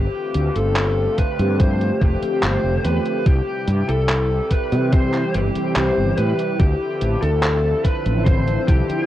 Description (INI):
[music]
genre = vaporwave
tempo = 72 BPM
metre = 4/4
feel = straight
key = unclear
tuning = A4 = 440 Hz
[part]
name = lead guitar through a small cranked amp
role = melody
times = 0.0-9.1 s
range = G4 to C5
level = -24 LUFS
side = left 2 dB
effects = overdrive, tape echo
[part]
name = lush unison pad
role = sustained chords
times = 0.0-9.1 s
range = C3 to A4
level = -29 LUFS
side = equal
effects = chorus
[part]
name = fretless electric bass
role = bass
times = 0.0-8.9 s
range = F1 to C3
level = -20 LUFS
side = equal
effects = none
[part]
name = gated 80s digital drum machine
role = drums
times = 0.3-9.1 s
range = handclaps, hi-hat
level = -26 LUFS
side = equal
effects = gated reverb
[part]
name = electronic kick drum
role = drums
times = 1.2-8.9 s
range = none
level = -17 LUFS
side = equal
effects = none
[part]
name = mellow synth brass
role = accompaniment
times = 1.4-9.1 s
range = D3 to G4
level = -24 LUFS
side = equal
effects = ensemble chorus
[sound]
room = light reverb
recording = worn, warbling old tape, cassette tape, warbly pitch drift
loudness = -17 LUFS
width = side -13 dB against mid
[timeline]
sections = 0.0-9.1 A section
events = none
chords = 0.0 G9sus4; 3.3 C; 6.6 Dm9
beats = 0.77 1.60 2.43 | 3.27 4.10 4.93 5.77 | 6.60 7.43 8.27